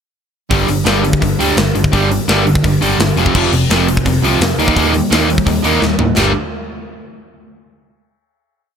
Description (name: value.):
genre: punk rock.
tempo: 170 BPM.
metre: 4/4.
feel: straight.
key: G minor.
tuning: A4 = 441 Hz.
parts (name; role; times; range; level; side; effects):
distorted electric guitar; riff; 0.5-6.3 s; F2 to D4; -16 LUFS; left 9 dB; distortion.
overdriven semi-hollow guitar; riff; 0.5-6.3 s; F2 to Eb4; -16 LUFS; right 10 dB; none.
picked electric bass; bass; 0.5-6.3 s; F1 to A2; -19 LUFS; equal; none.
tight metal drum kit; drums; 0.5-6.3 s; crash cymbal, hi-hat, kick drum, snare drum, toms; -17 LUFS; left 1 dB; none.
room: light reverb.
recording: none.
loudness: -11 LUFS.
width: side -7 dB against mid.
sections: 0.5-6.2 verse; 6.2-7.6 final chord.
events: drum fill 5.8-6.2.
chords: 0.5 G5; 3.2 F5; 4.6 Eb; 6.2 G5.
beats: | 0.51 0.86 1.22 1.57 | 1.93 2.28 2.64 2.99 | 3.35 3.70 4.05 4.41 | 4.76 5.11 5.46 5.82 | 6.17.